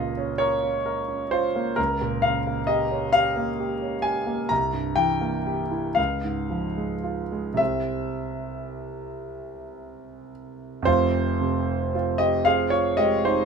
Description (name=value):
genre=classical, romantic nocturne for solo piano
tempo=36-46 BPM (dotted quarters)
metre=6/8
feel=rubato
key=F minor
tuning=A4 = 441 Hz
part: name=warm concert grand piano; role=solo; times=0.0-13.4 s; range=F1 to Bb5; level=-22 LUFS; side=equal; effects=none
room=light reverb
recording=minimal, uncompressed stereo recording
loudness=-22 LUFS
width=side -6 dB against mid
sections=0.0-10.9 A section; 10.9-13.4 B section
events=none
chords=0.0 Bbm/Db; 1.8 Gm7b5/Db; 4.5 C7; 6.0 Db; 7.6 C; 10.9 Fm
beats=0.40 | 1.78 3.14 | 4.50 5.98 | 7.60 9.24 | 10.87 12.45